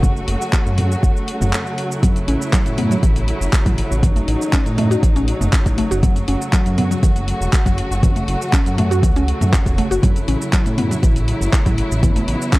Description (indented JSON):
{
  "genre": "afro house",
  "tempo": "120 BPM",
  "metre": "4/4",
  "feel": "straight",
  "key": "F# dorian",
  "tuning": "A4 = 440 Hz",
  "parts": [
    { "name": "warm studio string section", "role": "sustained chords", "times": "0.0-12.6 s", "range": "C#3 to F#4", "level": "-24 LUFS", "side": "equal", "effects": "sidechain pumping" },
    { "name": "dark detuned saw bass", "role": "bass", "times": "0.0-12.4 s", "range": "E1 to A2", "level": "-20 LUFS", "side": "equal", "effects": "sidechain pumping" },
    { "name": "deep house drum kit", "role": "drums", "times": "0.0-12.6 s", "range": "handclaps, hi-hat, shaker, toms", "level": "-24 LUFS", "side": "equal", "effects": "overdrive" },
    { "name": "electronic kick drum", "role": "drums", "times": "0.0-12.6 s", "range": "none", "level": "-16 LUFS", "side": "equal", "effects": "overdrive" },
    { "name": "mallet-like synth pluck", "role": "arpeggios", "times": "2.0-12.6 s", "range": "E3 to F#4", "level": "-23 LUFS", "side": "equal", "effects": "chorus, sidechain pumping, analog delay" }
  ],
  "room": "little or no reverb",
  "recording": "dry, gritty hardware recording",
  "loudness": "-15 LUFS",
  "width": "side -20 dB against mid",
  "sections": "0.0-12.6 A section",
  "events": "break 1.5-2.0",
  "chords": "0.0 F#m; 2.0 A6; 6.0 F#m; 10.0 A6"
}